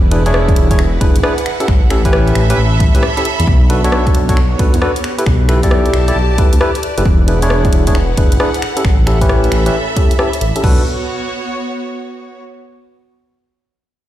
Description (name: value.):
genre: UK garage, two-step garage.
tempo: 134 BPM.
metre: 4/4.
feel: swing 65% on 16ths.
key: B minor.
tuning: A4 = 440 Hz.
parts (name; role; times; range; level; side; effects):
dark detuned saw bass; bass; 0.0-10.8 s; E1 to E2; -14 LUFS; equal; none.
clear symphonic string section; texture; 0.0-12.4 s; B3 to B5; -22 LUFS; right 1 dB; sidechain pumping.
barky tine electric piano; stabs; 0.1-10.8 s; C#4 to D5; -17 LUFS; equal; low-pass filter, ping-pong delay.
garage drum kit; drums; 0.1-10.8 s; crash cymbal, finger snaps, hi-hat, rim click; -22 LUFS; left 1 dB; studio reverb.
electronic kick drum; drums; 0.5-10.8 s; none; -13 LUFS; equal; overdrive, studio reverb.
room: light reverb.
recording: played on a big sound system in a bare room, stone room reverb.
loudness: -11 LUFS.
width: side -13 dB against mid.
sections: 0.0-10.6 A section; 10.6-12.4 B section.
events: filter sweep on tine electric piano 0.0-10.6.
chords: 0.0 E7; 1.5 A7; 3.5 Bm7; 5.0 G69/B; 7.1 E7; 8.6 A7; 10.6 B5.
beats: 0.34 0.79 1.24 | 1.68 2.13 2.58 3.03 | 3.47 3.92 4.37 4.82 | 5.26 5.71 6.16 6.61 | 7.06 7.50 7.95 8.40 | 8.85 9.29 9.74 10.19 | 10.64 11.09 11.53 11.98.